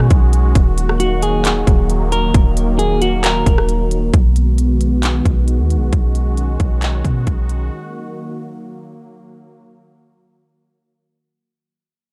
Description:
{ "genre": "hip hop, atmospheric cloud-rap", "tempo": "134 BPM", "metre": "4/4", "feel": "half-time", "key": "unclear", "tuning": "A4 = 439 Hz", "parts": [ { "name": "semi-hollow electric guitar", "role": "melody", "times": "0.0-4.1 s", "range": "F#4 to A#4", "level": "-23 LUFS", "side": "equal", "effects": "low-pass filter, tape echo" }, { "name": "sweeping resonant pad", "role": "sustained chords", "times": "0.0-11.3 s", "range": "D#3 to F#4", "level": "-25 LUFS", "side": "equal", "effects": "subtle chorus, sidechain pumping" }, { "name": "clean 808-style bass", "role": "bass", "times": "0.0-7.7 s", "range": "D#1 to B2", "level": "-18 LUFS", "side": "equal", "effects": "none" }, { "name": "trap drum kit", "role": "drums", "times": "0.0-7.6 s", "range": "handclaps, hi-hat, kick drum, rim click", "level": "-18 LUFS", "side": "equal", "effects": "none" } ], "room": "little or no reverb", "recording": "dark, warm production", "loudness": "-16 LUFS", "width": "mono", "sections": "0.0-4.1 A section; 4.1-11.3 B section", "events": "fade-out 4.1-11.3", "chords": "0.0 B6; 0.6 D#m; 4.1 B6; 7.7 D#m", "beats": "0.10 | 0.55 1.00 1.45 1.90 | 2.34 2.79 3.24 3.69 | 4.13 4.58 5.03 5.48 | 5.93 6.37 6.82 7.27 | 7.72 8.16 8.61 9.06 | 9.51 9.96 10.40 10.85" }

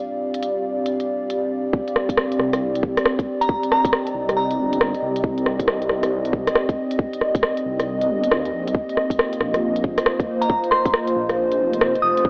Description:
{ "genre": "future garage", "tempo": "137 BPM", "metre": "4/4", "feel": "swing 63% on 16ths", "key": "C minor", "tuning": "A4 = 438 Hz", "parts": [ { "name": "dark analog pad", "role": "sustained chords", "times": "0.0-12.3 s", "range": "Bb3 to F5", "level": "-25 LUFS", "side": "equal", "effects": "chorus, sidechain pumping" }, { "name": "organic electronic drum kit", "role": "drums", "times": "0.3-12.2 s", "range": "hi-hat, rim click", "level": "-24 LUFS", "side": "equal", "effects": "vintage 12-bit sampler grit, studio reverb" }, { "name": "electronic kick drum", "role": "drums", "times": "1.7-12.3 s", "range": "none", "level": "-25 LUFS", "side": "equal", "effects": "vintage 12-bit sampler grit, studio reverb" }, { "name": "swelling detuned saw bass", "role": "bass", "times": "2.4-12.3 s", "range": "F1 to Eb2", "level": "-30 LUFS", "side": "equal", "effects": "none" }, { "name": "glassy synth bell", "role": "melody", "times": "3.4-4.8, 10.4-12.3 s", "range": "Bb5 to Eb6", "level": "-25 LUFS", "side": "equal", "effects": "chorus, phaser, analog delay" } ], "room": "moderate lush hall reverb, RT60 1.6 s", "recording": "cassette tape, AM radio sound", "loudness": "-21 LUFS", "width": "mono", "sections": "0.0-1.7 A section; 1.7-12.3 B section", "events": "none", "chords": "0.0 Csus2; 1.7 Cmadd9; 8.7 Bbsus4", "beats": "0.43 0.86 1.30 | 1.74 2.18 2.62 3.05 | 3.49 3.93 4.37 4.80 | 5.24 5.68 6.12 6.56 | 7.00 7.43 7.87 8.31 | 8.75 9.19 9.62 10.06 | 10.50 10.94 11.38 11.81 | 12.25" }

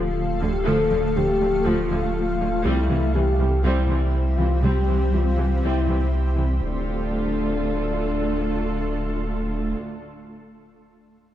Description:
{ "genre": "cinematic, hybrid orchestral and electronic film score", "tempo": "121 BPM", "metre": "4/4", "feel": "straight", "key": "D minor", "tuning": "A4 = 440 Hz", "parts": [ { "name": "dark French horn section", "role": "sustained chords", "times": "0.0-9.8 s", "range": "D4 to A4", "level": "-26 LUFS", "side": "left 4 dB", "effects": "none" }, { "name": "shimmering ambient pad", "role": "sustained chords", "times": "0.0-9.8 s", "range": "F3 to F5", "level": "-30 LUFS", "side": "right 1 dB", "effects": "chorus, built-in reverb" }, { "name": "warbly dusty pluck", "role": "arpeggios", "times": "0.0-6.5 s", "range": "C3 to A3", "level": "-32 LUFS", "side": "equal", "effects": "none" }, { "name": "pure sine sub bass", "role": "bass", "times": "0.0-9.7 s", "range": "D1 to C2", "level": "-24 LUFS", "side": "equal", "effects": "none" }, { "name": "rich studio viola section", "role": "accompaniment", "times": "0.4-9.7 s", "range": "C3 to A4", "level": "-30 LUFS", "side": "right 1 dB", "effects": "none" }, { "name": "warm symphonic cello section", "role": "bass", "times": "0.4-9.8 s", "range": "C2 to D2", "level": "-29 LUFS", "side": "right 2 dB", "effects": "none" } ], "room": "moderate concert hall reverb, RT60 2.5 s", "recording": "dark, warm production", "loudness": "-20 LUFS", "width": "side -12 dB against mid", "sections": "0.0-6.6 A section; 6.6-10.6 B section", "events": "none", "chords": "0.0 Dm; 2.6 C; 6.6 Dm", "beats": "0.17 | 0.67 1.16 1.66 2.15 | 2.65 3.15 3.64 4.14 | 4.63 5.13 5.62 6.12 | 6.62 7.11 7.61 8.10 | 8.60 9.10 9.59" }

